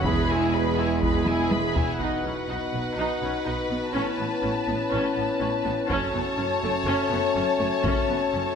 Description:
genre	cinematic, epic orchestral film score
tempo	123 BPM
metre	4/4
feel	straight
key	unclear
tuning	A4 = 440 Hz
part	rich symphonic violin section	melody	0.0-8.6 s	F#5 to B5	-31 LUFS	left 4 dB	none
part	rich symphonic violin section	second line	0.0-8.6 s	G#4 to C#5	-31 LUFS	left 4 dB	none
part	rich studio viola section	accompaniment	0.0-8.4 s	A3 to G#4	-30 LUFS	right 2 dB	none
part	mellow French horn section	sustained chords	0.0-8.6 s	A3 to E4	-31 LUFS	left 6 dB	none
part	pipe organ, stopped flute	sustained chords	0.0-8.6 s	B3 to E5	-31 LUFS	equal	none
part	rich symphonic cello section	bass	0.0-8.4 s	E2 to B2	-33 LUFS	right 3 dB	none
part	rich symphonic double bass section	bass	0.0-8.4 s	E1 to B1	-32 LUFS	right 4 dB	none
part	taiko ensemble	drums	0.0-2.9, 5.9-8.3 s	none	-29 LUFS	equal	none
part	warm trombone section	sustained chords	0.1-1.7 s	E3 to G#3	-34 LUFS	right 6 dB	none
part	reverse cymbal	sound effects	7.8-8.6 s	none	barely audible	none	none
room	moderate scoring stage reverb, RT60 2.0 s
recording	none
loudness	-22 LUFS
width	side -7 dB against mid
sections	0.0-2.0 A section; 2.0-8.6 B section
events	drum fill 1.3-2.0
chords	0.0 E; 2.0 B; 4.0 Aadd9; 5.9 F#m

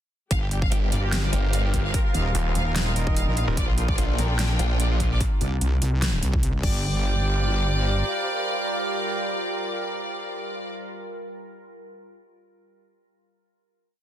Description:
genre	heavy wobble dubstep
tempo	147 BPM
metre	4/4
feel	swing 53% on 16ths, half-time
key	G minor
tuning	A4 = 440 Hz
part	clear studio violin section	melody	0.3-10.7 s	F4 to F5	-31 LUFS	left 1 dB	tape echo
part	evolving wavetable pad	sustained chords	0.8-10.8 s	G3 to Bb4	-33 LUFS	right 1 dB	chorus, built-in reverb, sidechain pumping
part	wobble bass	bass	0.3-8.0 s	Eb1 to C2	-24 LUFS	equal	chorus, overdrive
part	big-room dance drum kit	drums	0.3-6.7 s	crash cymbal, hi-hat, snare drum	-30 LUFS	equal	overdrive
part	electronic kick drum	drums	0.3-6.7 s	none	-25 LUFS	equal	overdrive
part	dark studio string section	texture	0.3-10.9 s	G4 to G5	-36 LUFS	left 2 dB	sidechain pumping
part	warm brass ensemble	stabs	0.5-10.8 s	Bb3 to G5	-34 LUFS	right 4 dB	tape echo
part	snarling distorted saw bass	bass	0.7-5.2 s	Eb1 to Bb1	-24 LUFS	equal	distortion, overdrive
room	little or no reverb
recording	dense, heavily limited modern master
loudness	-22 LUFS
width	side -11 dB against mid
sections	0.3-6.8 drop; 6.8-10.1 final note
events	drop 0.3-6.8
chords	0.3 Gm7; 1.9 Ebadd9; 3.6 Bb; 5.2 N.C.; 6.6 Gm7

